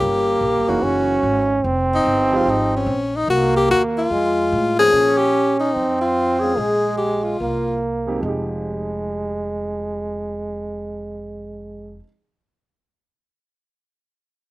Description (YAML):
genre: jazz, small-group swing and bop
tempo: 146 BPM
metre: 4/4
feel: swing 65% on 8ths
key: F minor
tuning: A4 = 440 Hz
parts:
  - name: warm tenor saxophone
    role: melody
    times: 0.0-7.8 s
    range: Db4 to Ab4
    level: -19 LUFS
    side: left 2 dB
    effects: none
  - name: warm trombone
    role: second line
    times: 0.0-12.0 s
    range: Ab3 to Db4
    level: -21 LUFS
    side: right 2 dB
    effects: none
  - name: warm upright piano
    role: accompaniment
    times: 0.0-12.1 s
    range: F2 to C5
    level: -28 LUFS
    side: right 2 dB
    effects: none
  - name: upright bass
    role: bass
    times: 0.0-12.0 s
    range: F1 to Bb2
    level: -28 LUFS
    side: equal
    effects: none
room: little or no reverb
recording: recorded outdoors, with no room sound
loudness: -17 LUFS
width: side -18 dB against mid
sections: 0.0-4.9 A section; 4.9-8.2 B section; 8.2-11.5 C section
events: none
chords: 0.0 Gm7b5; 0.8 Gb13; 1.7 Fm7; 3.3 Cm7b5; 4.1 F; 4.9 Bbm9; 5.8 Fm; 6.6 Fmadd11/Bb (rootless); 7.4 C7sus4; 8.2 Fm7